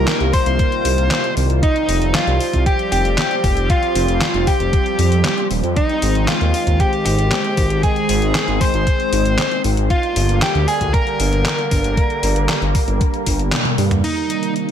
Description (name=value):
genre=synthwave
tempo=116 BPM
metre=4/4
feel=straight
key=C minor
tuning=A4 = 440 Hz
part: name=dark smooth lead guitar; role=melody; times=0.0-14.5 s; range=Eb4 to C5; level=-21 LUFS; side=equal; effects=overdrive, tape echo
part: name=soft synth bell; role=second line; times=0.0-13.5 s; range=Eb5 to C6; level=-26 LUFS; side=left 1 dB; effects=chorus, vintage 12-bit sampler grit, ping-pong delay
part: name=phased analog pad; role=sustained chords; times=0.0-14.7 s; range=C3 to F4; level=-23 LUFS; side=right 1 dB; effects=phaser, chorus
part: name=dark detuned saw bass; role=bass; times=0.0-14.0 s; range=Eb1 to G2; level=-18 LUFS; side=equal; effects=none
part: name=detuned 8-bit digital drum machine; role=drums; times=0.1-14.7 s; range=crash cymbal, handclaps, hi-hat, snare drum, toms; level=-22 LUFS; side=left 1 dB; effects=gated reverb
part: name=electronic kick drum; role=drums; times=0.3-13.4 s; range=none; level=-18 LUFS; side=equal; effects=none
room=light reverb, digital ambience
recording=none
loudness=-15 LUFS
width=side -9 dB against mid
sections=0.0-14.0 A section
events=drum fill 13.5-14.0; band accent 13.5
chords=0.0 Cm7; 1.6 Fsus2; 5.8 Ab; 9.9 Gm; 14.0 Cm7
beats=0.08 0.59 1.11 | 1.63 2.15 2.66 3.18 | 3.70 4.21 4.73 5.25 | 5.77 6.28 6.80 7.32 | 7.83 8.35 8.87 9.39 | 9.90 10.42 10.94 11.46 | 11.97 12.49 13.01 13.53 | 14.04 14.56